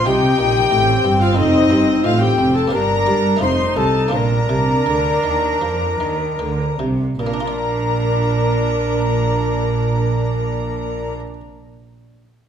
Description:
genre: classical, baroque-style concerto movement with solo episodes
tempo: 74-92 BPM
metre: 4/4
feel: straight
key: Bb major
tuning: A4 = 440 Hz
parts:
  - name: mellow tenor recorder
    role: melody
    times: 0.0-11.1 s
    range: Eb4 to C5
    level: -21 LUFS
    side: left 2 dB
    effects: none
  - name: warm chamber violin section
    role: melody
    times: 0.0-11.1 s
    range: Eb5 to C6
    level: -24 LUFS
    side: left 4 dB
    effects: none
  - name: warm chamber violin section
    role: second line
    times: 0.0-11.1 s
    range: Eb5 to C6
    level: -25 LUFS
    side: left 1 dB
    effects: none
  - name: buff-stop harpsichord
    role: accompaniment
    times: 0.0-11.4 s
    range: C2 to D5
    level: -26 LUFS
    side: right 1 dB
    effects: none
  - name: dark chamber viola section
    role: accompaniment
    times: 0.0-11.1 s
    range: C4 to Eb4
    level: -24 LUFS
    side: left 1 dB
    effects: none
  - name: dark chamber cello section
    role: bass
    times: 0.0-11.1 s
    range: C2 to G3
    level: -23 LUFS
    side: right 2 dB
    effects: none
  - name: warm chamber double bass section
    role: bass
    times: 0.0-11.1 s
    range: F1 to G2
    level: -23 LUFS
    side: right 3 dB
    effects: none
room: wet recital hall reverb, RT60 1.4 s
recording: minimal, uncompressed stereo recording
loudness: -15 LUFS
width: side -8 dB against mid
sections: 0.0-7.2 A section; 7.2-10.4 B section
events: slowing down 0.1-7.2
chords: 0.0 Cm; 1.4 F7; 2.7 Gm; 3.4 F7; 4.1 Bb

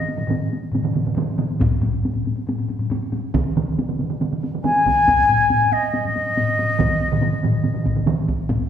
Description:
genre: japanese traditional, taiko drum ensemble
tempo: 139 BPM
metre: 4/4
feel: straight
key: unclear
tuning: A4 = 437 Hz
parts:
  - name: mellow concert flute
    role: melody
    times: 0.0-0.5, 4.6-8.1 s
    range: Eb5 to Ab5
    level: -18 LUFS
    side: left 2 dB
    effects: none
  - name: solo taiko drums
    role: percussion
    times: 0.1-8.7 s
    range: none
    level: -27 LUFS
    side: equal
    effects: none
  - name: taiko ensemble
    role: percussion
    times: 0.2-8.6 s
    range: none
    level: -24 LUFS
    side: left 2 dB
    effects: none
  - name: taiko ensemble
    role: percussion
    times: 0.2-8.2 s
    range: none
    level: -23 LUFS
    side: right 4 dB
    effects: none
  - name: taiko ensemble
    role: percussion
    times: 1.6-8.6 s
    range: none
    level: -26 LUFS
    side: right 1 dB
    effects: none
room: wet recital hall reverb, RT60 1.4 s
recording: recorded in a church or concert hall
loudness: -18 LUFS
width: side -9 dB against mid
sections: 0.0-8.5 A section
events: speeding up 0.0-8.7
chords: none

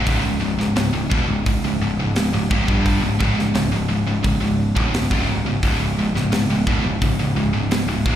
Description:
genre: heavy metal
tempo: 86 BPM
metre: 4/4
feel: straight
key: C# minor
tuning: A4 = 440 Hz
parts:
  - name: scooped high-gain guitar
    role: riff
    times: 0.0-8.2 s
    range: C#2 to G3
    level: -21 LUFS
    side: equal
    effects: distortion, slapback echo
  - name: overdriven picked electric bass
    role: bass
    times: 0.0-8.2 s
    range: C#1 to G1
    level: -21 LUFS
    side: equal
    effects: none
  - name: tight metal drum kit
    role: drums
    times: 0.1-8.2 s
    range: hi-hat, kick drum, snare drum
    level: -23 LUFS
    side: equal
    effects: none
room: little or no reverb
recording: live gig heard through the venue's PA, recital hall reverb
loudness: -17 LUFS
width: side -10 dB against mid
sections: 0.0-8.2 A section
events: none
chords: 0.0 C#5

